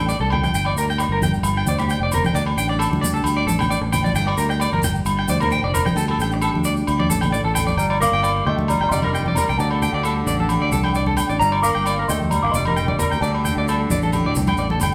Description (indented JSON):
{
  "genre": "highlife guitar band",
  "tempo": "132 BPM",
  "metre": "4/4",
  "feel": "straight",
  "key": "G minor",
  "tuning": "A4 = 439 Hz",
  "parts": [
    { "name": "picked steel-string acoustic guitar", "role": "accompaniment", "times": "0.0-14.9 s", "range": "G2 to C5", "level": "-31 LUFS", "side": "equal", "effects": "none" },
    { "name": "electric guitar at the edge of break-up", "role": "arpeggios", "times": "0.0-14.9 s", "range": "G4 to Bb5", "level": "-26 LUFS", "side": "equal", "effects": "none" },
    { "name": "fingered electric bass", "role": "bass", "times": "0.0-14.9 s", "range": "F1 to D2", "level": "-25 LUFS", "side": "equal", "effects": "none" },
    { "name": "maracas", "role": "percussion", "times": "0.1-14.9 s", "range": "none", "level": "-34 LUFS", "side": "equal", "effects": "none" },
    { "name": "agogo bells", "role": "percussion", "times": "0.3-14.9 s", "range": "none", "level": "-30 LUFS", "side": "equal", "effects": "none" },
    { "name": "congas", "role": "percussion", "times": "0.3-14.9 s", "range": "none", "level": "-28 LUFS", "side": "equal", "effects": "none" },
    { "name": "celesta", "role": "melody", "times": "7.8-14.8 s", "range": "D5 to D6", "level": "-26 LUFS", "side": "equal", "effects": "none" },
    { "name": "raspy tenor saxophone", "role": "second line", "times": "7.8-14.8 s", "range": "D3 to Bb3", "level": "-33 LUFS", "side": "equal", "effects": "none" }
  ],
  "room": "wet large studio reverb, RT60 1.2 s",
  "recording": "band playing live in one room",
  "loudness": "-20 LUFS",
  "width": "mono",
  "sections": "0.0-7.8 A section; 7.8-14.9 B section",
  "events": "none",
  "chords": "0.0 Dsus4; 0.5 Gm; 2.3 Dsus4; 4.2 Gm; 6.0 Dsus4; 7.8 Gm; 9.6 Dsus4; 11.4 Gm; 13.2 Dsus4"
}